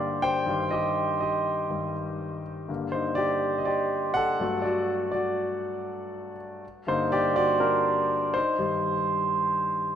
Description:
pop; 122 BPM; 4/4; straight; G harmonic minor; A4 = 440 Hz
clear concert grand piano; solo; 0.0-10.0 s; G2 to G5; -24 LUFS; equal
wet lush hall reverb, RT60 2.8 s; rough home demo mix; -24 LUFS; side -9 dB against mid
0.0-10.0 A section
grand piano solo 0.0-10.0
0.5 Cm/G; 2.7 Gm; 4.4 D/G; 6.6 Gm; 8.3 Cm/G

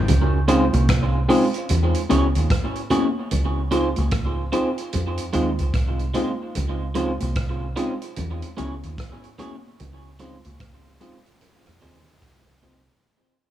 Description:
lovers rock reggae; 74 BPM; 4/4; swing 62% on 16ths; Db major; A4 = 438 Hz
deep dub fingered electric bass; bass; 0.0-12.9 s; C2 to F2; -22 LUFS; right 1 dB
vintage drum kit; drums; 0.1-12.9 s; hi-hat, kick drum, rim click; -26 LUFS; equal
congas; percussion; 0.1-12.9 s; -30 LUFS; right 1 dB
mellow tine electric piano; accompaniment; 0.5-12.8 s; B3 to Ab4; -25 LUFS; left 2 dB; medium stereo tremolo, tape echo
electric guitar through a small old amp; stabs; 0.5-12.8 s; Ab3 to C#5; -26 LUFS; right 4 dB; vibrato effect, tape echo
light reverb, small room ambience; small room reverb; -20 LUFS; side -12 dB against mid
0.1-13.0 A section
fade-out 0.1-13.0
0.1 Dbmaj7; 1.7 E6; 3.3 Dbmaj7; 4.9 Fm7; 8.2 E6; 9.8 Dbmaj7; 11.4 Fm7

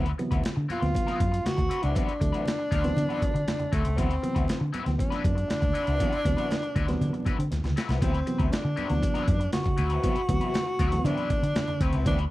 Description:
funk; 119 BPM; 4/4; straight; D mixolydian; A4 = 439 Hz
electric guitar at the edge of break-up; accompaniment; 0.0-12.2 s; F#3 to B4; -36 LUFS; left 6 dB; wah, warbly pitch drift
barky reed electric piano; stabs; 0.0-12.2 s; C3 to B3; -32 LUFS; right 1 dB
vintage muted fingered electric bass; bass; 0.0-12.2 s; C2 to D3; -27 LUFS; equal
breakbeat sampler-style drum kit; drums; 0.1-12.3 s; hi-hat, kick drum, snare drum; -29 LUFS; equal
congas; percussion; 0.2-12.2 s; -37 LUFS; right 2 dB
breathy tenor saxophone; melody; 0.7-12.2 s; A3 to F#4; -30 LUFS; equal; slapback echo
digital ambience; dry, close 1970s-style studio recording, vinyl crackle; -24 LUFS; side -17 dB against mid
0.0-8.0 A section; 8.0-12.3 B section
drum fill 7.5-8.0
0.0 D13

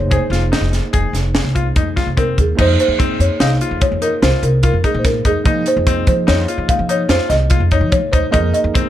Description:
progressive instrumental, band music in an uneven meter; 146 BPM; 7/4; straight; F minor; A4 = 440 Hz
folk marimba with medium mallets; melody; 0.0-8.9 s; Ab4 to F5; -19 LUFS; right 1 dB
tine electric piano; accompaniment; 0.0-8.9 s; Bb3 to Eb5; -26 LUFS; right 5 dB
upright bass; bass; 0.0-8.8 s; F1 to F3; -17 LUFS; equal
bright grand piano; arpeggios; 0.1-8.9 s; C4 to Ab4; -23 LUFS; left 6 dB; tape echo
crisp fusion drum kit; drums; 0.1-8.8 s; crash cymbal, hi-hat, kick drum, snare drum; -18 LUFS; equal
light reverb; dark, warm production; -13 LUFS; side -12 dB against mid
0.0-2.6 A section; 2.6-8.9 B section
0.0 Ab/F; 2.6 Fm7

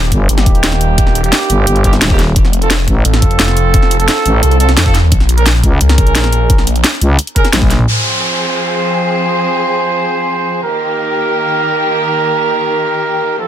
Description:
dark technical drum and bass; 174 BPM; 4/4; straight; F minor; A4 = 440 Hz
phased detuned saw bass; bass; 0.0-6.8 s; Eb1 to F2; -12 LUFS; equal; phaser, overdrive, sidechain pumping
growling FM bass; bass; 0.1-7.9 s; Eb1 to Db2; -12 LUFS; equal; tube saturation
drum and bass drum kit; drums; 0.1-7.9 s; hi-hat, snare drum, toms; -15 LUFS; equal; overdrive, low-pass filter on hats, low-pass filter on snare, low-pass filter on cymbals, low-pass filter on toms, low-pass filter on room
electronic kick drum; drums; 0.1-7.7 s; -12 LUFS; equal; overdrive
warm brass ensemble; stabs; 0.3-13.5 s; Bb3 to C5; -16 LUFS; right 4 dB; low-pass filter, tape echo
rich studio string section; sustained chords; 7.9-13.5 s; Eb3 to A4; -18 LUFS; left 3 dB; sidechain pumping
downlifter; sound effects; 7.9-10.6 s; -18 LUFS; equal
light reverb, digital ambience; dense, heavily limited modern master; -10 LUFS; side -10 dB against mid
0.0-7.9 A section; 7.9-13.5 B section
drop 0.0-7.9; drum fill 7.5-7.9
0.0 Eb; 2.4 F; 5.1 Bbm7; 7.9 Fm; 10.6 Eb

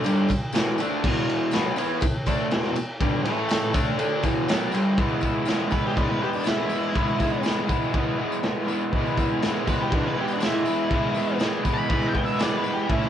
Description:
garage rock duo or trio; 121 BPM; 4/4; straight; E mixolydian from 5.0 s; A4 = 440 Hz
overdriven semi-hollow guitar; riff; 0.0-13.1 s; E2 to E4; -24 LUFS; equal
tambourine; percussion; 0.0-13.1 s; -44 LUFS; left 3 dB
crunchy breakbeat drum kit; drums; 0.1-13.0 s; crash cymbal, kick drum, ride cymbal, snare drum; -26 LUFS; equal
octave-fuzz lead guitar; melody; 5.7-13.1 s; D4 to B5; -29 LUFS; right 1 dB; distortion
moderate studio ambience, RT60 0.5 s; band playing live in one room, cassette tape, nothing above 10.3 kHz; -21 LUFS; side -10 dB against mid
0.0-5.0 A section; 5.0-13.1 B section
0.0 E5; 3.2 A5; 3.7 E5; 5.0 E

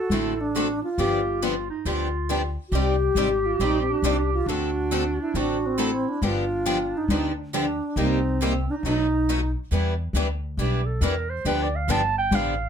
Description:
acoustic string swing (jazz manouche); 138 BPM; 4/4; swing 62% on 8ths; A4 = 439 Hz
mellow alto flute; melody; 0.0-9.5 s; C4 to G4; -26 LUFS; equal; slapback echo
mellow clarinet; second line; 0.0-12.7 s; C4 to A5; -28 LUFS; right 3 dB
picked steel-string acoustic guitar; accompaniment; 0.1-12.5 s; B2 to D5; -29 LUFS; left 8 dB
picked steel-string acoustic guitar; accompaniment; 0.1-12.5 s; B2 to D5; -30 LUFS; right 7 dB
upright bass; bass; 0.1-12.7 s; G1 to E2; -27 LUFS; equal
light reverb; -22 LUFS; side -8 dB against mid
0.0-9.7 A section; 9.7-12.7 B section
clarinet solo 9.7-12.7
0.0 D7; 1.0 G7; 2.7 Cmadd9; 4.5 D7; 6.2 G7; 8.0 Cm7; 8.8 B7; 9.7 Em7; 11.5 G7

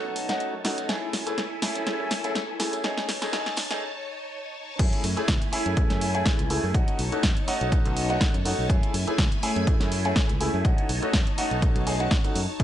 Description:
filtered disco house; 123 BPM; 4/4; swing 55% on 16ths; F# dorian; A4 = 440 Hz
bright grand piano; accompaniment; 0.0-12.6 s; A3 to G#4; -29 LUFS; equal; phaser, sidechain pumping, low-pass filter
phased string machine; sustained chords; 0.0-12.6 s; A3 to A5; -33 LUFS; left 1 dB; ensemble chorus, phaser, sidechain pumping, low-pass filter
fingered electric bass; bass; 0.0-12.6 s; B1 to F#2; -30 LUFS; equal; sidechain pumping, high-pass filter, low-pass filter
punchy analog drum machine; drums; 0.2-12.6 s; crash cymbal, hi-hat, snare drum; -29 LUFS; equal; sidechain pumping on hats, sidechain pumping on cymbals
tambourine; percussion; 0.2-3.8 s; -41 LUFS; right 1 dB
electronic kick drum; drums; 4.8-12.6 s; -23 LUFS; equal
digital ambience; high-pass filter, nothing above 11.0 kHz; -23 LUFS; side -12 dB against mid
0.0-4.8 A section; 4.8-12.6 B section
build-up 0.0-4.8; drum fill 0.0-3.8; filter sweep 0.0-4.8; break 3.8-4.8; drop 4.8-12.6
0.0 B9; 0.9 F#m9; 2.8 B9; 4.8 F#m9; 6.7 B9; 8.7 F#m9; 10.6 B9

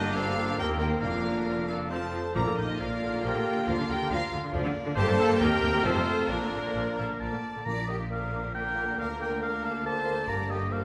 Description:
classical; 137 BPM; 3/4; straight; Bb major; A4 = 437 Hz
rich studio violin section; melody; 0.0-10.8 s; D4 to Bb5; -40 LUFS; equal
clear symphonic violin section; second line; 0.0-10.8 s; Bb3 to D5; -42 LUFS; equal
warm clarinet; second line; 0.0-10.8 s; F4 to D5; -39 LUFS; equal
warm oboe; second line; 0.0-10.8 s; D4 to Bb5; -37 LUFS; equal
clear symphonic viola section; accompaniment; 0.0-10.8 s; C3 to C4; -36 LUFS; equal
clear trombone section; sustained chords; 0.0-10.8 s; D3 to D4; -41 LUFS; equal
mellow French horn section; sustained chords; 0.0-10.8 s; Bb3 to Bb4; -38 LUFS; equal
warm trumpet section; stabs; 0.0-7.4 s; C4 to Bb4; -38 LUFS; equal
rich symphonic cello section; bass; 0.0-10.8 s; D2 to D3; -38 LUFS; equal
rich symphonic double bass section; bass; 0.0-10.8 s; F1 to Eb2; -39 LUFS; equal
mellow hollow flute section; second line; 0.2-10.8 s; Bb4 to D6; -44 LUFS; equal
timpani; percussion; 1.0-3.0, 7.7-8.3 s; F2 to Bb2; -39 LUFS; equal
warm bassoon; accompaniment; 7.7-10.8 s; Bb3; -41 LUFS; equal
wet scoring stage reverb, RT60 1.9 s; -29 LUFS; mono
0.0-7.7 A section; 7.7-10.8 B section
0.0 Gm; 0.6 Cm7/Eb; 1.0 Bb/F; 1.9 F; 2.4 Bb; 3.7 Bb/D; 5.0 Gm; 5.4 Cm7/Eb; 5.9 F; 6.3 Bb; 9.0 Bb/D; 10.3 Gm

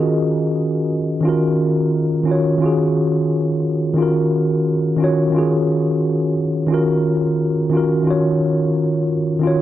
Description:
hip hop; 88 BPM; 4/4; swing 63% on 16ths; Eb minor; A4 = 440 Hz
mellow tine electric piano; solo; 0.0-9.6 s; Eb3 to Eb5; -15 LUFS; equal; medium stereo tremolo, cassette tape, low-pass filter
light reverb; cassette tape; -16 LUFS; side -12 dB against mid
0.0-9.6 A section
0.0 Ebm7

